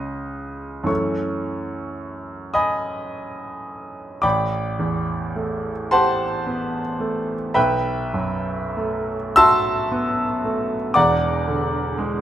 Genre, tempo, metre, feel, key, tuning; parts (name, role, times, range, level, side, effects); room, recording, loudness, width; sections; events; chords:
classical, impressionist solo piano; 36 BPM (dotted quarters); 6/8; uneven beats, rubato; F# dorian, A dorian from 4.2 s; A4 = 440 Hz
clear grand piano; solo; 0.0-12.2 s; E1 to E6; -20 LUFS; equal
light reverb; close, detailed microphones; -19 LUFS; side -11 dB against mid
0.0-4.2 A section; 4.2-12.2 B section
0.0 C#5; 0.9 F#m7; 4.2 Am9; 7.6 B5; 11.0 E7